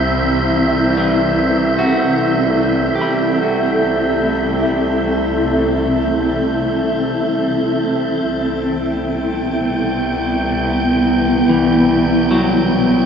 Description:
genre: ambient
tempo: free time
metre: none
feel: none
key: C lydian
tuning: A4 = 439 Hz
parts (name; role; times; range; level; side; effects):
- granular cloud pad; sustained chords; 0.0-13.1 s; B3 to E5; -16 LUFS; equal; built-in reverb, shimmer reverb
- warm chamber cello section; bass; 0.0-13.1 s; C2; -23 LUFS; right 1 dB; none
- wind-like tuned noise texture; texture; 0.0-13.1 s; E5 to G6; -21 LUFS; right 1 dB; built-in reverb, shimmer reverb
- electric guitar at the edge of break-up; arpeggios; 1.0-13.1 s; E3 to B5; -22 LUFS; equal; tape echo, shimmer reverb
room: wet cathedral reverb, RT60 6.7 s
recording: in a vast, echoing space, nothing above 7.6 kHz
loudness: -14 LUFS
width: side -7 dB against mid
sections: 0.0-13.1 A section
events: fade-in on clean electric guitar 0.0-13.1; filter sweep on ambient pad 0.0-13.1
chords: 0.0 C; 8.3 Em/C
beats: free time

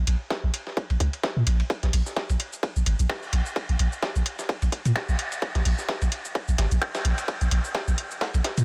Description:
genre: minimal techno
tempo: 129 BPM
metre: 4/4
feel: swing 56% on 16ths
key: Bb minor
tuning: A4 = 440 Hz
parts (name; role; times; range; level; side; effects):
- punchy sub bass; bass; 0.0-8.6 s; Ab1 to Bb2; -25 LUFS; equal; sidechain pumping
- booming analog drum machine; drums; 0.1-8.6 s; cabasa, finger snaps, hi-hat; -33 LUFS; equal; none
- dusty soul sampler-style drum kit; drums; 0.1-8.6 s; hi-hat, ride cymbal, snare drum; -37 LUFS; equal; sidechain pumping on cymbals, high-pass filter on cymbals, high-pass filter on snare, sidechain pumping on hats, high-pass filter on hats, high-pass filter on room
- electronic kick drum; drums; 0.3-8.5 s; none; -31 LUFS; equal; high-pass filter on kick, high-pass filter on room
room: light reverb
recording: none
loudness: -26 LUFS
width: mono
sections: 0.0-8.6 A section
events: build-up 0.0-8.6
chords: none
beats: 0.30 0.77 1.24 | 1.70 2.17 2.63 3.10 | 3.56 4.03 4.49 4.96 | 5.42 5.89 6.35 6.82 | 7.28 7.75 8.21

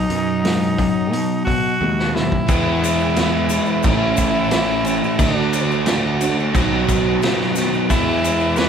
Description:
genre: classic rock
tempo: 88 BPM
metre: 4/4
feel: straight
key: E major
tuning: A4 = 442 Hz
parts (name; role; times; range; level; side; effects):
- raspy tenor saxophone; melody; 0.0-8.7 s; D4 to B4; -22 LUFS; right 1 dB; none
- crunchy overdriven guitar; riff; 0.0-8.7 s; A2 to F#4; -24 LUFS; left 7 dB; none
- crunchy overdriven guitar; riff; 0.0-8.7 s; A2 to F#4; -26 LUFS; right 8 dB; none
- fuzz picked electric bass; bass; 0.0-8.7 s; A1 to B2; -23 LUFS; right 1 dB; overdrive
- vintage drum kit; drums; 0.1-8.7 s; crash cymbal, hi-hat, kick drum, snare drum, toms; -21 LUFS; equal; none
- picked steel-string acoustic guitar; accompaniment; 2.5-8.7 s; E2 to F#4; -28 LUFS; right 6 dB; none
- overdriven tonewheel organ; sustained chords; 2.5-8.7 s; E3 to B4; -31 LUFS; equal; none
- distorted electric guitar; riff; 2.5-8.7 s; A2 to F#4; -25 LUFS; right 1 dB; none
- tube shaker; percussion; 2.5-8.7 s; none; -35 LUFS; left 7 dB; none
room: moderate large studio reverb, RT60 0.8 s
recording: band playing live in one room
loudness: -16 LUFS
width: side -7 dB against mid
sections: 0.0-2.5 A section; 2.5-8.7 B section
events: drum fill 1.8-2.5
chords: 0.0 B; 2.5 E; 3.8 A; 5.2 D; 6.5 B; 7.9 E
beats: 0.44 1.12 1.80 | 2.48 3.16 3.84 4.52 | 5.20 5.87 6.55 7.22 | 7.90 8.57

